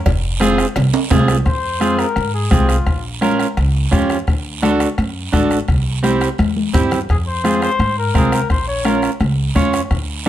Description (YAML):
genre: latin, cumbia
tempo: 170 BPM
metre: 4/4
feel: straight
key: F harmonic minor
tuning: A4 = 440 Hz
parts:
  - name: upright bass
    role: bass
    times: 0.1-10.3 s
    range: F1 to Ab2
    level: -19 LUFS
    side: equal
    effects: none
  - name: bombo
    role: percussion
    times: 0.1-10.3 s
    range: none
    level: -20 LUFS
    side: left 1 dB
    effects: none
  - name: congas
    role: percussion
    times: 0.1-10.3 s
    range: none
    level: -21 LUFS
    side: left 4 dB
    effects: none
  - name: cowbell and timbales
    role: percussion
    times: 0.1-1.4 s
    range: none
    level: -21 LUFS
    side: right 8 dB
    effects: none
  - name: guiro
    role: percussion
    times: 0.1-10.3 s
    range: none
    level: -31 LUFS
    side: right 7 dB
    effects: none
  - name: clean electric guitar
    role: accompaniment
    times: 0.4-10.3 s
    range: C4 to Db5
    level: -18 LUFS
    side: right 3 dB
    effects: none
  - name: clear flugelhorn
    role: second line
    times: 1.5-3.0, 7.1-9.0 s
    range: F4 to Db5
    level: -21 LUFS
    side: left 4 dB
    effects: none
room: light reverb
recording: none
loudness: -14 LUFS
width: side -12 dB against mid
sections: 0.0-1.5 A section; 1.5-10.3 B section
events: flugelhorn solo 0.0-1.5, 1.5-10.3; drum fill 0.9-1.5, 6.4-7.1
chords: 0.1 Fm; 2.9 Bbm; 4.3 D; 5.7 C; 7.1 Fm; 8.5 Bbm